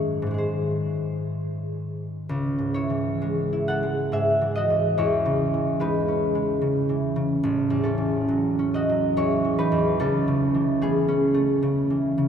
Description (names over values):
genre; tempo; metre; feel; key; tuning
classical, solo harp piece; 61-76 BPM; 3/4; rubato; C# minor; A4 = 440 Hz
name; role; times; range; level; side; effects
concert harp; solo; 0.0-12.3 s; A1 to F#5; -21 LUFS; equal; none
room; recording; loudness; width
wet cathedral reverb, RT60 5.0 s; none; -21 LUFS; side -8 dB against mid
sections
0.0-2.3 A section; 2.3-12.3 B section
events
none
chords
0.0 G#; 2.3 C#m; 5.0 C#m/E; 7.4 A6; 10.0 A/C#